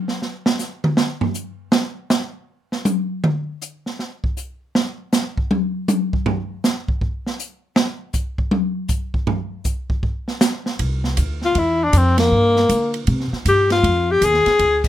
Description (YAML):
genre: jazz, small-group swing and bop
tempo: 159 BPM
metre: 4/4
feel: swing 65% on 8ths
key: C major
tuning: A4 = 440 Hz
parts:
  - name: open jazz drum kit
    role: drums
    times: 0.1-14.9 s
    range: crash cymbal, hi-hat, kick drum, ride cymbal, snare drum, toms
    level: -20 LUFS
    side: right 1 dB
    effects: none
  - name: upright bass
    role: bass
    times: 10.8-14.9 s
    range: C2 to D3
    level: -19 LUFS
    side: equal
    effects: none
  - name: breathy alto saxophone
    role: melody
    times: 11.4-14.9 s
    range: Bb3 to Ab4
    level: -15 LUFS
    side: left 2 dB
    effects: none
room: light reverb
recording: none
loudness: -17 LUFS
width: side -12 dB against mid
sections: 0.0-10.8 A section; 10.8-14.9 B section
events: drum solo 0.0-10.8; band accent 12.1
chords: 0.0 N.C.; 10.8 C; 12.3 Gm; 13.1 C5; 13.8 Fm7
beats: | 0.22 0.60 0.98 1.35 | 1.73 2.11 2.49 2.86 | 3.24 3.62 4.00 4.37 | 4.75 5.13 5.50 5.88 | 6.26 6.64 7.01 7.39 | 7.77 8.14 8.52 8.90 | 9.28 9.66 10.04 10.41 | 10.79 11.17 11.55 11.93 | 12.31 12.70 13.08 13.46 | 13.84 14.22 14.60